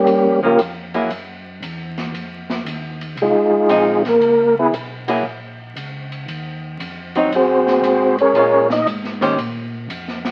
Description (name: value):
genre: soul jazz organ trio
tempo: 116 BPM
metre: 4/4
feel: swing 68% on 8ths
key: unclear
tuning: A4 = 440 Hz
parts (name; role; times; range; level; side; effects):
- percussive tonewheel organ; melody; 0.0-8.9 s; G3 to Eb5; -16 LUFS; equal; chorus vibrato, fast rotary speaker
- mellow tonewheel organ; bass; 0.0-10.3 s; F1 to Bb2; -34 LUFS; equal; slow rotary speaker
- swinging big-band drum kit; drums; 0.1-10.3 s; hi-hat, ride cymbal, snare drum; -31 LUFS; equal; none
- archtop guitar, miked and amplified; accompaniment; 0.4-9.4 s; Eb3 to C5; -21 LUFS; equal; none
room: moderate studio reverb, RT60 0.9 s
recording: very old 78 rpm record, vinyl crackle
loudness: -17 LUFS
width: mono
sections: 0.0-10.3 A section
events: tonewheel organ solo 0.0-10.3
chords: 0.1 Gm7b5; 1.1 Esus2; 2.1 Fm7; 4.2 Dbm7; 5.2 Bbm; 6.3 Ab7; 8.3 Bbm7; 9.4 Fsus4